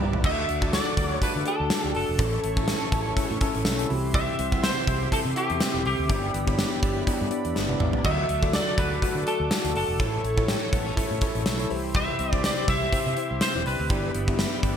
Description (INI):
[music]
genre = 1980s-style pop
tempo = 123 BPM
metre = 4/4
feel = swing 55% on 16ths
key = unclear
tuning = A4 = 440 Hz
[part]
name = mellow tine electric piano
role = accompaniment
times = 0.0-14.8 s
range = G2 to B5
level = -30 LUFS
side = left 2 dB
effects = medium stereo tremolo
[part]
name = brassy analog pad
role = sustained chords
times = 0.0-14.8 s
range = G4 to D6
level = -35 LUFS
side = left 1 dB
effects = chorus
[part]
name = direct-recorded clean electric guitar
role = riff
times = 0.0-14.8 s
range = E3 to A4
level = -36 LUFS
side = right 4 dB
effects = wide subtle chorus, ping-pong delay
[part]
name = fretless electric bass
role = bass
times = 0.0-14.8 s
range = E1 to D3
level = -30 LUFS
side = equal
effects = none
[part]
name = gated 80s drum kit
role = drums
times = 0.0-14.8 s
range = crash cymbal, hi-hat, kick drum, snare drum, tambourine, toms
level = -26 LUFS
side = equal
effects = gated reverb
[part]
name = synth chime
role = second line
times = 0.2-14.8 s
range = G5 to E6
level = -38 LUFS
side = equal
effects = ensemble chorus, ping-pong delay
[part]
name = lightly driven lead guitar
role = melody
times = 0.3-14.8 s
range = G4 to E5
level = -29 LUFS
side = equal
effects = wide subtle chorus
[sound]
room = moderate plate reverb, RT60 1.4 s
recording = bright 1980s-style digital production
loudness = -22 LUFS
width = side -8 dB against mid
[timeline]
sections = 0.2-14.8 A section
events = drum fill 0.0, 7.6-8.0; tine electric piano fill 0.0, 7.3-8.0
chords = 0.2 D; 2.2 A; 3.9 C; 6.1 G6; 8.0 D; 10.0 A; 11.7 C; 13.9 G6